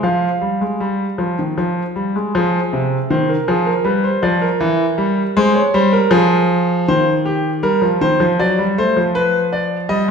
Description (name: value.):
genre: classical, baroque-style two-part invention for grand piano.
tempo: 79 BPM.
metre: 3/4.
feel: straight.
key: F minor, C minor from 6.9 s.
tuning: A4 = 442 Hz.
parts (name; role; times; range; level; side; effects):
clear grand piano; solo; 0.0-10.1 s; C3 to F5; -14 LUFS; equal; none.
room: wet recital hall reverb, RT60 1.4 s.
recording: heard from further back in the room.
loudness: -14 LUFS.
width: side -6 dB against mid.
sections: 0.0-2.3 A section; 2.3-6.9 B section; 6.9-10.1 C section.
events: none.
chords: 0.0 Fm; 3.9 G7; 4.6 C7/E; 6.1 Fm; 6.9 Cm/Eb; 8.4 D7/F#; 9.2 G7/F.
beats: | 0.03 0.81 1.58 | 2.34 3.10 3.86 | 4.61 5.36 6.12 | 6.88 7.64 8.40 | 9.16 9.91.